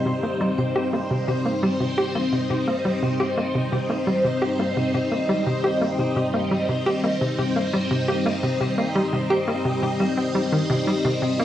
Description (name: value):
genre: ambient, sequencer-driven space music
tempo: 86 BPM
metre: 4/4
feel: straight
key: C minor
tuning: A4 = 439 Hz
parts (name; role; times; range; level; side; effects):
- string machine, full ensemble; sustained chords; 0.0-11.4 s; G3 to F5; -24 LUFS; equal; phaser, ensemble chorus
- hollow square pluck; riff; 0.1-11.4 s; C3 to G4; -24 LUFS; equal; chorus, ping-pong delay
- vibraphone with hard mallets; arpeggios; 0.2-11.3 s; C4 to C5; -29 LUFS; left 5 dB; auto-pan, ping-pong delay
room: wet studio reverb, RT60 0.7 s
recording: home recording on cassette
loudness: -20 LUFS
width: side -12 dB against mid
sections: 0.0-11.4 A section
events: none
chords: 0.0 Cm